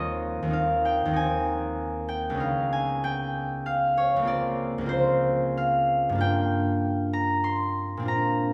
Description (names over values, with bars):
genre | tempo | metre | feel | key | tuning
classical, solo harp piece | 96 BPM | 3/4 | rubato | unclear | A4 = 440 Hz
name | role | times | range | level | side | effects
concert harp | solo | 0.0-8.5 s | Db2 to C6 | -26 LUFS | equal | none
room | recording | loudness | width
wet recital hall reverb, RT60 1.6 s | recorded in a church or concert hall | -26 LUFS | mono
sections
0.0-8.5 A section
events
none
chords
0.0 Eb69; 0.5 Abadd9/Eb; 4.3 Cm11/Db; 6.2 Gm7